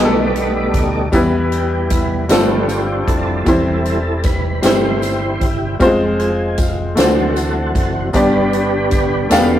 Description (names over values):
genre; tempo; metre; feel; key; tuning
slow gospel; 51 BPM (dotted quarters); 6/8; straight; C major; A4 = 442 Hz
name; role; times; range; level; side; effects
clear upright piano; accompaniment; 0.0-9.6 s; G2 to F5; -17 LUFS; left 1 dB; none
tonewheel organ; sustained chords; 0.0-9.6 s; B2 to D5; -19 LUFS; right 1 dB; fast rotary speaker, chorus vibrato
fingered electric bass; bass; 0.0-9.6 s; E1 to E2; -23 LUFS; equal; none
swinging big-band drum kit; drums; 0.4-9.5 s; hi-hat, kick drum, snare drum; -19 LUFS; right 1 dB; none
tambourine; percussion; 1.1-9.6 s; none; -33 LUFS; right 6 dB; none
room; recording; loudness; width
moderate small room reverb, RT60 0.5 s; rough rehearsal-room recording, tube saturation; -13 LUFS; side -11 dB against mid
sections
0.0-9.6 A section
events
tonewheel organ solo 0.0-9.6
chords
0.0 B7alt; 1.1 Em; 2.3 G9sus4; 3.5 C/E; 5.8 Fm; 7.0 D7; 8.1 G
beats
| 1.13 2.29 | 3.46 4.63 | 5.80 6.97 | 8.14 9.31